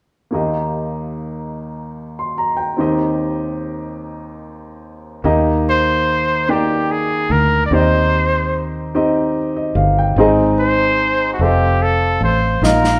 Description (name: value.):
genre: slow gospel.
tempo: 49 BPM (dotted quarters).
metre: 6/8.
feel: straight.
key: Eb major.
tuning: A4 = 440 Hz.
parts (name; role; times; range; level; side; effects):
warm upright piano; accompaniment; 0.3-13.0 s; Eb2 to C6; -20 LUFS; equal; none.
fingered electric bass; bass; 5.2-13.0 s; F1 to Eb2; -21 LUFS; equal; none.
clear trumpet; melody; 5.7-13.0 s; Gb4 to D5; -19 LUFS; equal; none.
snare drum; drums; 12.6-13.0 s; none; -23 LUFS; equal; none.
room: wet large studio reverb, RT60 1.3 s.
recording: band playing live in one room.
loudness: -17 LUFS.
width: mono.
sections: 0.3-5.3 A section; 5.3-13.0 B section.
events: drum fill 12.6-13.0.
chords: 0.3 Eb; 2.8 Cm/Eb; 5.3 Eb; 7.7 Cm/Eb; 10.2 Ab; 11.4 F7.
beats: | 0.32 1.55 | 2.79 4.02 | 5.25 6.48 | 7.71 8.94 | 10.17 11.40 | 12.63.